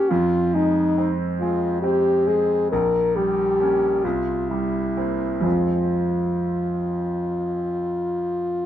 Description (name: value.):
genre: classical, romantic duo for French horn and grand piano.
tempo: 40-47 BPM (dotted quarters).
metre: 12/8.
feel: rubato.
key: F minor.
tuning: A4 = 440 Hz.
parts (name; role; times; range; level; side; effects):
warm French horn; melody; 0.0-8.7 s; Eb4 to Bb4; -22 LUFS; left 1 dB; none.
clear concert grand piano; accompaniment; 0.0-8.7 s; Bb1 to C#4; -24 LUFS; right 2 dB; none.
room: light reverb.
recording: none.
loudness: -20 LUFS.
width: side -11 dB against mid.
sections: 0.0-8.7 A section.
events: none.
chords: 0.1 Fm; 2.7 Gdim/Bb; 4.0 C7; 5.4 Fm.